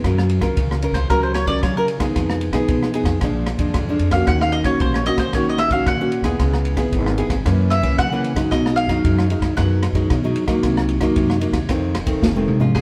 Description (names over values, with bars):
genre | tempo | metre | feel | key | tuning
samba and choro | 113 BPM | 4/4 | straight | unclear | A4 = 441 Hz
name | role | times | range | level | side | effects
nylon-string guitar | accompaniment | 0.0-12.8 s | F2 to Bb4 | -23 LUFS | equal | none
upright bass | bass | 0.0-12.8 s | Eb1 to Gb3 | -24 LUFS | equal | none
open jazz drum kit | drums | 0.0-12.8 s | kick drum, ride cymbal, rim click, snare drum, toms | -25 LUFS | equal | none
mandolin | second line | 0.9-12.8 s | Ab4 to Gb5 | -25 LUFS | equal | none
room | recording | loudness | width
wet stone room reverb, RT60 1.2 s | band playing live in one room | -19 LUFS | mono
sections
0.0-12.8 A section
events
mandolin solo 0.0-12.8; drum fill 12.2-12.8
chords
0.0 Gbmaj7; 2.2 Fm7b5; 3.2 Bb7; 4.3 Ebm7; 6.4 Dbm7; 7.5 Gb7; 8.5 B6; 10.6 Cm7b5; 11.7 F7